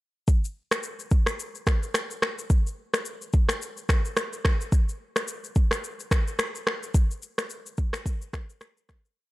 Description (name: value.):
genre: afrobeats.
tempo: 108 BPM.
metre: 4/4.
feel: swing 58% on 16ths.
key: none.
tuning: none.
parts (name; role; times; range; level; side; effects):
afro-pop drum kit; drums; 0.3-9.2 s; finger snaps, kick drum, rim click, shaker; -24 LUFS; equal; none.
room: light reverb.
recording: none.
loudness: -24 LUFS.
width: side -19 dB against mid.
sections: 0.3-9.2 verse.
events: fade-out 6.9-9.2.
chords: none.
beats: | 0.28 0.83 1.39 1.95 | 2.50 3.06 3.61 4.17 | 4.72 5.28 5.83 6.39 | 6.95 7.50 8.06 8.61.